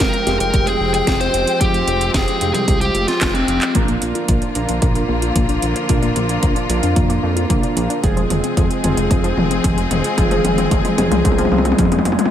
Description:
italo disco; 112 BPM; 4/4; straight; F minor, F dorian from 3.8 s; A4 = 441 Hz
fuzz lead guitar; melody; 0.0-3.7 s; C4 to C5; -20 LUFS; equal; distortion, tape echo
clear studio string section; sustained chords; 0.0-12.3 s; D3 to G5; -23 LUFS; left 3 dB
chorused polysynth; stabs; 0.0-12.3 s; Ab3 to G5; -23 LUFS; right 4 dB; ping-pong delay
chorused synth bass; bass; 0.0-12.2 s; F1 to F2; -22 LUFS; equal; tube saturation
electronic kick drum; drums; 0.0-11.9 s; -19 LUFS; equal
house drum kit; drums; 0.0-12.3 s; handclaps, hi-hat, snare drum, toms; -21 LUFS; left 1 dB; gated reverb
analog pluck; arpeggios; 3.7-12.3 s; C3 to F4; -24 LUFS; left 4 dB; chorus, ping-pong delay
light reverb; -14 LUFS; side -10 dB against mid
0.0-3.8 A section; 3.8-12.3 B section
drum fill 3.2-3.8, 3.8-12.3
0.0 Fmadd9; 3.8 Bb; 8.0 Fm

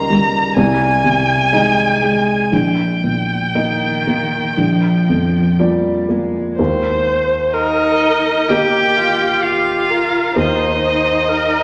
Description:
classical, slow romantic movement for piano quartet; 58-66 BPM; 4/4; rubato; Eb major; A4 = 440 Hz
rich violin; melody; 0.0-11.6 s; Eb5 to Bb5; -19 LUFS; equal
rich cello; second line; 0.0-11.6 s; Eb3 to G4; -23 LUFS; equal
dark baby grand piano; accompaniment; 0.0-11.6 s; Bb1 to Eb5; -20 LUFS; equal
dark viola; accompaniment; 0.0-11.6 s; D4 to C5; -21 LUFS; equal
wet recital hall reverb, RT60 1.8 s; -16 LUFS; mono
0.0-6.6 A section; 6.6-11.6 B section
0.0 Eb7/Db; 0.6 Ab/C; 2.5 Eb/Bb; 4.6 Bb; 6.6 Eb; 10.4 Eb5

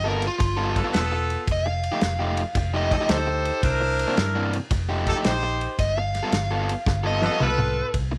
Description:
electric blues shuffle; 111 BPM; 4/4; swing 67% on 8ths; A4 = 440 Hz
overdriven slide guitar; second line; 0.0-7.9 s; F4 to F5; -29 LUFS; equal
overdriven electric guitar; riff; 0.0-8.2 s; C3 to A4; -30 LUFS; equal
vintage muted fingered electric bass; bass; 0.0-8.2 s; E1 to G2; -29 LUFS; equal
warm soul drum kit; drums; 0.2-8.1 s; kick drum, ride cymbal, snare drum, toms; -30 LUFS; equal
clear horn section; stabs; 0.8-7.9 s; B3 to C5; -29 LUFS; equal
light reverb, small room ambience; -24 LUFS; mono
0.0-7.9 A section
electric slide guitar solo 0.0-8.2; drum fill 6.9-7.9
0.0 G9; 1.5 F9; 3.6 C9; 4.7 F9; 5.8 G9

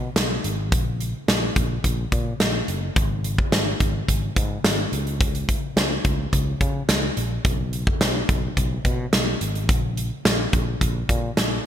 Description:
1980s-style pop; 107 BPM; 4/4; straight; A4 = 440 Hz
sustaining fretless electric bass; bass; 0.0-11.6 s; F#1 to C#3; -26 LUFS; equal
big rock drum kit; drums; 0.2-11.5 s; hi-hat, kick drum, snare drum; -21 LUFS; equal; gated reverb
light reverb; bright 1980s-style digital production; -20 LUFS; side -10 dB against mid
0.0-11.7 A section

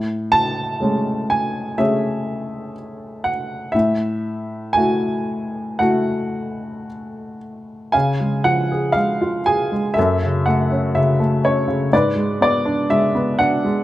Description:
classical, lyrical solo piano; 55-63 BPM; 4/4; rubato; F# minor; A4 = 439 Hz
warm baby grand piano; solo; 0.0-13.8 s; F#2 to A5; -17 LUFS; equal
light reverb; close, detailed microphones; -17 LUFS; side -15 dB against mid
0.0-7.9 A section; 7.9-13.8 B section
0.0 Amaj7; 3.7 F#m7/A; 7.9 C#; 10.0 F#m; 11.9 G#dim

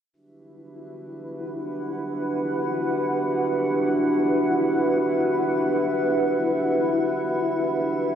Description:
house; free time; E minor; A4 = 440 Hz
dark analog pad; sustained chords; 0.9-8.2 s; D4 to E5; -24 LUFS; right 1 dB; chorus
granular cloud pad; texture; 1.1-8.2 s; E4 to F#5; -25 LUFS; left 1 dB; built-in reverb
wet lush hall reverb, RT60 3.0 s; -21 LUFS; side -9 dB against mid
0.1-8.2 A section
0.1 Em9

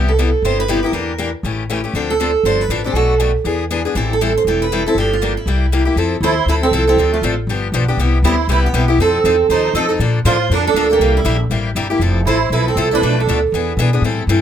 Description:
acoustic string swing (jazz manouche); 238 BPM; 4/4; swing 56% on 8ths; A4 = 439 Hz
picked steel-string acoustic guitar; accompaniment; 0.0-14.4 s; B2 to A4; -19 LUFS; left 5 dB
upright bass; bass; 0.0-14.4 s; E1 to B2; -18 LUFS; equal
picked steel-string acoustic guitar; melody; 0.1-13.4 s; E4 to Eb5; -18 LUFS; right 5 dB
musette accordion; second line; 6.2-13.4 s; G3 to A4; -20 LUFS; right 7 dB
little or no reverb; close, detailed microphones; -13 LUFS; side -9 dB against mid
0.0-6.0 A section; 6.0-14.0 B section
0.0 Cmaj7; 0.9 Em7b5; 1.4 A7; 1.9 Dm7; 3.0 Bm7; 3.5 E7; 4.0 Am7; 5.0 Gm7; 5.5 C7; 6.0 Fmaj7; 7.0 Dm7; 7.5 G7; 8.0 Cmaj7; 9.0 F7; 10.0 Bbmaj7; 11.0 C7; 12.0 Fmaj7; 13.0 Bm7b5; 13.5 E7

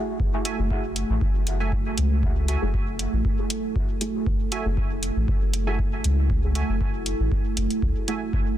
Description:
dub techno; 118 BPM; 4/4; swing 53% on 16ths; F# minor; A4 = 440 Hz
deep dark ambient pad; sustained chords; 0.0-8.6 s; A3 to B4; -30 LUFS; right 3 dB; chorus, built-in reverb, sidechain pumping
deep mellow chord stab; stabs; 0.0-8.2 s; A3 to G#4; -34 LUFS; equal; chorus, phaser, sidechain pumping, dub echo
soft dub sub bass; bass; 0.2-8.4 s; F#1 to C#2; -25 LUFS; equal; sidechain pumping
electronic kick drum; drums; 0.2-8.4 s; -26 LUFS; equal
wavetable chord stab; riff; 0.5-8.2 s; F#4 to G#5; -36 LUFS; right 4 dB; sidechain pumping, dub echo
electronic hi-hat; drums; 0.5-8.2 s; -29 LUFS; equal
digital ambience; dense, heavily limited modern master; -22 LUFS; side -12 dB against mid
0.2-8.6 A section
filter sweep on synth stab 0.2-8.6
0.2 F#m9

